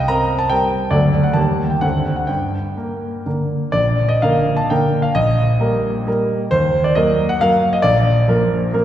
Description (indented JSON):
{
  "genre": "classical, romantic triple-time dance for piano with dotted rhythms",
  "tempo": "117-150 BPM",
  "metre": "3/4",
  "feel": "rubato",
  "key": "G minor, Bb major from 3.7 s",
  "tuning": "A4 = 440 Hz",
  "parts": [
    { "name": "clear concert grand piano", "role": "solo", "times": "0.0-8.8 s", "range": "Bb1 to Bb5", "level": "-15 LUFS", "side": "equal", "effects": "none" }
  ],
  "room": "wet concert hall reverb, RT60 1.8 s",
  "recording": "heard from further back in the room",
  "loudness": "-15 LUFS",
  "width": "side -11 dB against mid",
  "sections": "0.0-3.7 A section; 3.7-8.8 B section",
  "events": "none",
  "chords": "0.0 C5; 0.9 D; 1.4 Eb; 1.8 D7; 2.3 Gm; 3.7 Bb; 5.1 Eb/Bb; 6.5 Ebm; 7.8 Bb"
}